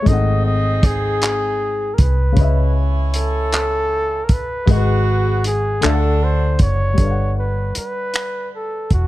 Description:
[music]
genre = slow six-eight R&B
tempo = 52 BPM (dotted quarters)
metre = 6/8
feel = straight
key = unclear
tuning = A4 = 440 Hz
[part]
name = warm flugelhorn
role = melody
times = 0.0-9.1 s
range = F#4 to D#5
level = -22 LUFS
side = equal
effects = none
[part]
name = dark baby grand piano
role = accompaniment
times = 0.0-9.1 s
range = C#3 to F#5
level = -25 LUFS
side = left 6 dB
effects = none
[part]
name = vintage muted fingered electric bass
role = bass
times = 0.0-9.1 s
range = E1 to D2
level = -18 LUFS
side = equal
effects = none
[part]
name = warm horn section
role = stabs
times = 0.1-6.6 s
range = B#3 to G#5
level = -29 LUFS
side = right 2 dB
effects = none
[part]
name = warm soul drum kit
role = drums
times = 0.1-9.1 s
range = finger snaps, handclaps, hi-hat, kick drum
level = -17 LUFS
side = equal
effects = none
[sound]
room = studio reverb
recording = dark, warm production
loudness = -15 LUFS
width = side -16 dB against mid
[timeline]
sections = 0.0-7.0 A section; 7.0-9.1 B section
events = none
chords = 0.1 G#7b9; 2.4 C#m9; 4.7 G#m7; 5.8 D; 7.0 Gmaj7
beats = | 0.06 1.22 | 2.37 3.52 | 4.68 5.83 | 6.99 8.14

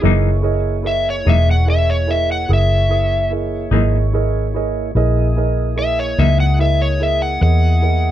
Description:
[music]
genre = slow blues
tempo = 49 BPM (dotted quarters)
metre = 12/8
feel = straight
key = F# mixolydian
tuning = A4 = 441 Hz
[part]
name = clean electric guitar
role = accompaniment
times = 0.0-6.4 s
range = F#2 to D#4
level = -20 LUFS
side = left 6 dB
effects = tremolo
[part]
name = dark upright piano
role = accompaniment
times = 0.0-8.1 s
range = E4 to D#6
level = -23 LUFS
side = right 6 dB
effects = none
[part]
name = mellow tonewheel organ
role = sustained chords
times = 0.0-8.1 s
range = A#3 to D#5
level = -28 LUFS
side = right 2 dB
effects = slow rotary speaker
[part]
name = vintage muted fingered electric bass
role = bass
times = 0.0-8.1 s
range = E1 to E2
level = -16 LUFS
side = equal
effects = none
[part]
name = overdriven slide guitar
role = melody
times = 0.9-8.1 s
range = C#5 to F#5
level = -20 LUFS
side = left 1 dB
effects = none
[sound]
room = light reverb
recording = dark, warm production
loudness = -14 LUFS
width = side -12 dB against mid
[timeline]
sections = 0.0-8.1 A section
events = electric slide guitar solo 0.0-8.1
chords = 0.0 F#13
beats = | 0.04 1.27 2.50 3.73 | 4.95 6.18 7.41

